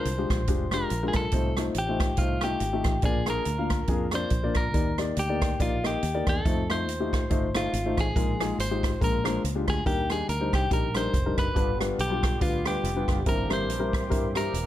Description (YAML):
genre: uptempo gospel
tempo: 141 BPM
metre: 4/4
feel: swing 57% on 8ths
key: Eb major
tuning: A4 = 440 Hz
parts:
  - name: clean electric guitar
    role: melody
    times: 0.0-14.7 s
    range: F4 to C5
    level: -31 LUFS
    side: equal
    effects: slapback echo
  - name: warm upright piano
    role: accompaniment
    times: 0.0-14.5 s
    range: G2 to F5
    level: -30 LUFS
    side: left 3 dB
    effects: none
  - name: fingered electric bass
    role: bass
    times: 0.1-14.7 s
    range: Eb1 to G2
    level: -31 LUFS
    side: equal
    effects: none
  - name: swinging big-band drum kit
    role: drums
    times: 0.1-14.7 s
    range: hi-hat, kick drum, rim click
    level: -28 LUFS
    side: right 1 dB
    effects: none
  - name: bright tonewheel organ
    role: sustained chords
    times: 11.5-14.7 s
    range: D3 to G4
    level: -36 LUFS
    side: right 4 dB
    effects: fast rotary speaker, overdrive, chorus vibrato
room: studio reverb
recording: none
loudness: -24 LUFS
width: side -13 dB against mid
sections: 0.0-14.7 A section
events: none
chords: 0.0 Bb7; 1.3 F7; 3.0 Bb; 4.7 Ebmaj7; 6.5 F7; 8.2 Bb7sus4; 9.0 Bb7; 9.9 Ebmaj7; 11.6 G7; 13.3 C7/G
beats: 0.05 0.48 0.91 | 1.33 1.76 2.19 2.61 | 3.04 3.47 3.89 4.32 | 4.75 5.17 5.60 6.03 | 6.45 6.88 7.30 7.73 | 8.16 8.58 9.01 9.43 | 9.86 10.29 10.71 11.14 | 11.56 11.99 12.41 12.84 | 13.26 13.69 14.11 14.54